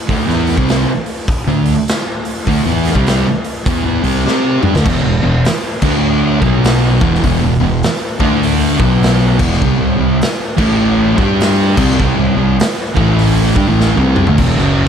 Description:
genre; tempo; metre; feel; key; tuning
stoner and doom metal; 101 BPM; 4/4; swing 62% on 8ths; unclear; A4 = 440 Hz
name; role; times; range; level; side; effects
thick fuzz guitar; riff; 0.1-14.9 s; E2 to C5; -16 LUFS; left 9 dB; distortion
thick fuzz guitar; riff; 0.1-14.9 s; E2 to C5; -16 LUFS; right 9 dB; distortion
fuzz fingered electric bass; bass; 0.1-14.9 s; E1 to C3; -18 LUFS; equal; overdrive
raw garage drum kit; drums; 0.1-14.7 s; crash cymbal, hi-hat, kick drum, snare drum, toms; -17 LUFS; equal; none
room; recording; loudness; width
light reverb, small room ambience; none; -11 LUFS; side -8 dB against mid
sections
0.0-4.9 A section; 4.9-14.4 B section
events
drum fill 4.3-4.9, 13.8-14.4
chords
0.1 D5; 4.9 E5; 5.8 D5; 6.3 B5; 6.9 E5; 8.1 D5; 8.7 B5; 9.3 E5; 9.6 C5; 10.5 A5; 11.1 G5; 11.7 C5; 12.9 A5; 13.5 C5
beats
| 0.09 0.69 1.28 1.88 | 2.48 3.07 3.67 4.26 | 4.86 5.46 6.05 6.64 | 7.24 7.83 8.43 9.03 | 9.62 10.21 10.81 11.41 | 12.00 12.60 13.20 13.79 | 14.39

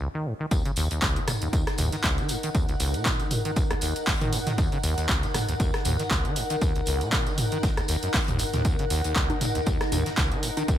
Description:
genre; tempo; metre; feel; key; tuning
acid house; 118 BPM; 4/4; swing 56% on 16ths; Eb minor; A4 = 440 Hz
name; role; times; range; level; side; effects
acid bass, saw; riff; 0.0-10.8 s; Eb1 to Eb3; -29 LUFS; equal; tube saturation, cassette tape, ping-pong delay
electronic kick drum; drums; 0.5-10.8 s; none; -27 LUFS; equal; overdrive
loose indie drum kit; drums; 0.5-10.8 s; hi-hat, snare drum, tambourine; -41 LUFS; left 1 dB; none
punchy analog drum machine; drums; 0.5-10.8 s; congas, handclaps, hi-hat, rim click, toms; -28 LUFS; right 1 dB; overdrive
tambourine; percussion; 0.5-10.8 s; none; -39 LUFS; left 4 dB; none
granular cloud pad; texture; 1.2-10.8 s; Eb4 to Gb5; -32 LUFS; equal; built-in reverb, sidechain pumping
room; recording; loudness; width
light reverb, small room ambience; none; -23 LUFS; side -11 dB against mid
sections
0.5-10.8 A section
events
break 0.0-0.5; drop 0.5-10.8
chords
0.0 Eb7(no3); 0.5 Ebm7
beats
0.01 | 0.51 1.02 1.53 2.04 | 2.55 3.06 3.56 4.07 | 4.58 5.09 5.60 6.11 | 6.62 7.12 7.63 8.14 | 8.65 9.16 9.67 10.18 | 10.68

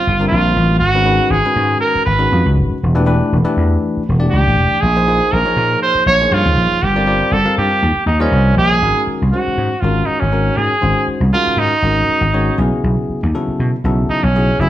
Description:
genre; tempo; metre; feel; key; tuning
electric jazz fusion; 120 BPM; 4/4; swing 55% on 16ths; G# minor from 8.8 s; A4 = 440 Hz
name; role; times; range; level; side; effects
bright trumpet; melody; 0.0-14.7 s; C#4 to C#5; -15 LUFS; right 2 dB; none
bell-like tine electric piano; accompaniment; 0.0-14.7 s; C#3 to F5; -20 LUFS; left 2 dB; none
vintage slap bass; bass; 0.1-14.7 s; E1 to B2; -16 LUFS; equal; none
room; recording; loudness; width
moderate large studio reverb, RT60 1.2 s; band playing live in one room; -12 LUFS; side -12 dB against mid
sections
0.0-8.8 A section; 8.8-14.7 B section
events
none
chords
0.0 Gm11; 0.8 G#m7; 2.8 Em7; 4.8 A#m11; 6.8 Gm7; 7.8 D#69; 8.8 G#9sus4; 12.6 B13sus4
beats
0.31 | 0.81 1.31 1.81 2.31 | 2.81 3.31 3.81 4.31 | 4.81 5.31 5.81 6.31 | 6.81 7.31 7.81 8.32 | 8.82 9.32 9.82 10.32 | 10.83 11.33 11.83 12.34 | 12.84 13.34 13.84 14.35

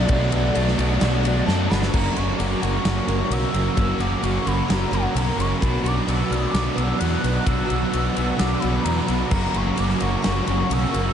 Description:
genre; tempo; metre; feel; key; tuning
rock, shoegaze and dream pop; 130 BPM; 4/4; straight; unclear; A4 = 440 Hz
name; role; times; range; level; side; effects
hollow clarinet-like synth lead; melody; 0.0-11.1 s; D5 to F#6; -28 LUFS; equal; chorus, diffuse ambient delay
picked twelve-string acoustic guitar; arpeggios; 0.0-11.1 s; A3 to F#4; -32 LUFS; right 2 dB; ensemble chorus, diffuse ambient delay
overdriven semi-hollow guitar; riff; 0.0-11.1 s; F#2 to F#4; -26 LUFS; right 6 dB; reverse reverb
raw garage guitar; riff; 0.0-11.1 s; F#2 to F#4; -29 LUFS; left 7 dB; overdrive, analog chorus
tight distorted guitar; riff; 0.0-11.1 s; F#2 to F#4; -30 LUFS; equal; distortion
fuzz fingered electric bass; bass; 0.0-11.1 s; F#1 to F#2; -24 LUFS; equal; overdrive
huge arena drum kit; drums; 0.1-11.0 s; crash cymbal, kick drum, ride cymbal, snare drum; -27 LUFS; equal; none
room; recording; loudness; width
wet huge ambient reverb, RT60 8.8 s; dreamy mix soaked in reverb, nothing above 10.6 kHz; -19 LUFS; side -8 dB against mid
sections
0.0-1.9 A section; 1.9-11.1 B section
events
drum fill 1.5-1.9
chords
0.0 Bm7; 1.9 F#; 5.6 Bm; 9.3 F#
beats
| 0.09 0.55 1.01 1.47 | 1.93 2.39 2.85 3.31 | 3.77 4.23 4.70 5.16 | 5.62 6.08 6.54 7.00 | 7.47 7.93 8.39 8.86 | 9.32 9.78 10.24 10.71

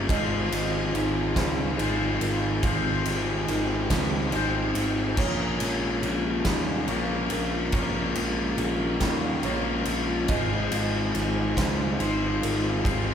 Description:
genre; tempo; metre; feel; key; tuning
post-rock; 47 BPM (dotted quarters); 6/8; straight; Bb dorian; A4 = 440 Hz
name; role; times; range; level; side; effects
warm studio string section; sustained chords; 0.0-13.1 s; Db3 to G4; -36 LUFS; right 4 dB; none
electric guitar through a small old amp; arpeggios; 0.0-13.1 s; Bb2 to Db5; -33 LUFS; right 1 dB; spring reverb
felt-muted upright piano; arpeggios; 0.0-13.1 s; Bb4 to Eb5; -39 LUFS; right 6 dB; none
overdriven electric guitar; riff; 0.0-13.1 s; Ab3 to C5; -27 LUFS; left 3 dB; none
fuzz picked electric bass; bass; 0.0-13.1 s; Ab1 to Eb2; -30 LUFS; right 1 dB; overdrive
big rock drum kit; drums; 0.1-13.1 s; crash cymbal, kick drum, ride cymbal, snare drum; -29 LUFS; equal; none
room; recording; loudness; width
moderate large studio reverb, RT60 0.9 s; band playing live in one room; -23 LUFS; side -8 dB against mid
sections
0.0-13.1 A section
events
none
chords
0.1 Fm7/Ab; 5.2 Bbm7; 10.3 Fm7/Ab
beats
| 0.09 1.36 | 2.63 3.91 | 5.18 6.46 | 7.74 9.01 | 10.29 11.57 | 12.84

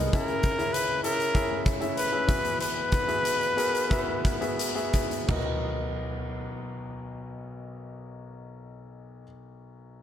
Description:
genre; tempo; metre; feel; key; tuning
piano-driven pop; 84-99 BPM; 4/4; straight; B major; A4 = 440 Hz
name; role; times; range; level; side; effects
clear concert grand piano; accompaniment; 0.0-10.0 s; B1 to F#5; -32 LUFS; left 1 dB; none
clear trumpet; melody; 0.1-4.6 s; A#4 to B4; -28 LUFS; left 1 dB; none
huge arena drum kit; drums; 0.1-5.5 s; china cymbal, hi-hat, kick drum, toms; -29 LUFS; equal; none
room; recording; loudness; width
light reverb, studio reverb; none; -25 LUFS; side -10 dB against mid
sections
0.0-5.3 A section; 5.3-8.1 B section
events
slowing down 0.1-5.3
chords
0.1 C#m; 2.3 Eadd9; 5.3 Bmaj7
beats
| 0.13 0.74 1.35 1.97 | 2.60 3.25 3.91 4.59 | 5.29 6.00 6.71 7.43

